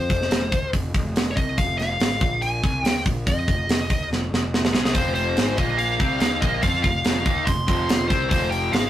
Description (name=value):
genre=hard rock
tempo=142 BPM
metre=4/4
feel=straight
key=F minor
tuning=A4 = 440 Hz
part: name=high-gain lead guitar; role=melody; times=0.0-8.9 s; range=Ab4 to C6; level=-25 LUFS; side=left 1 dB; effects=distortion
part: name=fuzz picked electric bass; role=bass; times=0.0-8.9 s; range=F1 to F2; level=-27 LUFS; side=equal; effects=overdrive
part: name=tight metal drum kit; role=drums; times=0.1-8.8 s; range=hi-hat, kick drum, snare drum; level=-22 LUFS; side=equal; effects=none
part: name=overdriven semi-hollow guitar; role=riff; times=4.9-8.9 s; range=F2 to F4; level=-29 LUFS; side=left 3 dB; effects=none
part: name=tight distorted guitar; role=riff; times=4.9-8.9 s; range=F2 to F4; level=-29 LUFS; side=right 4 dB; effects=distortion
room=moderate studio ambience, RT60 0.5 s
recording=rough rehearsal-room recording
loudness=-19 LUFS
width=side -12 dB against mid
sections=0.0-8.9 A section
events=drum fill 4.1-4.9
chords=0.0 F5; 2.2 Bb5; 2.6 Fm; 5.6 Bb5; 6.0 Fm